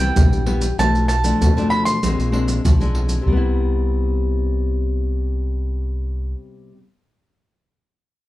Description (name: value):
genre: samba and choro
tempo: 97 BPM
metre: 4/4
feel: straight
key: C major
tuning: A4 = 440 Hz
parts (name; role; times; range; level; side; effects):
- mandolin; melody; 0.0-2.6 s; G5 to C6; -23 LUFS; right 3 dB; none
- nylon-string guitar; accompaniment; 0.0-6.9 s; G2 to E4; -23 LUFS; left 3 dB; none
- modern bright fingered electric bass; bass; 0.0-6.3 s; Bb1 to F2; -21 LUFS; equal; none
- maracas, surdo and pandeiro; percussion; 0.2-3.4 s; none; -19 LUFS; equal; none
room: moderate studio ambience, RT60 0.4 s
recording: band playing live in one room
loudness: -17 LUFS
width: side -16 dB against mid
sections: 0.0-3.3 A section; 3.3-5.8 B section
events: none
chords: 0.0 Cmaj7; 0.8 Bm7b5; 2.0 Bb9; 3.3 Cmaj7